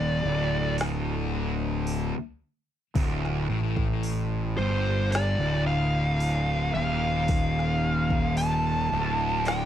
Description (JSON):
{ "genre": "stoner and doom metal", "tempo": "55 BPM", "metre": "4/4", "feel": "straight", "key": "D minor", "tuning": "A4 = 440 Hz", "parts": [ { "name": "fuzz lead guitar", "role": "melody", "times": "0.0-9.7 s", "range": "C5 to A5", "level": "-28 LUFS", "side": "equal", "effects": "distortion, slapback echo" }, { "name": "thick fuzz guitar", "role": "riff", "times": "0.0-9.7 s", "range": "D2 to A2", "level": "-30 LUFS", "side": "left 7 dB", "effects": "distortion" }, { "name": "thick fuzz guitar", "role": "riff", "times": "0.0-9.7 s", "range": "D2 to A2", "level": "-30 LUFS", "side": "right 7 dB", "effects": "distortion" }, { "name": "fuzz fingered electric bass", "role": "bass", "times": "0.0-9.7 s", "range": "D1 to A1", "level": "-30 LUFS", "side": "equal", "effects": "overdrive" }, { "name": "organic electronic drum kit", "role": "drums", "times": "0.8-9.7 s", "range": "hi-hat, kick drum, snare drum", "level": "-29 LUFS", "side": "equal", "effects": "none" } ], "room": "light reverb", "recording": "none", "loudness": "-24 LUFS", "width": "side -10 dB against mid", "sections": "0.0-9.7 A section", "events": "none", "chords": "0.0 Dm" }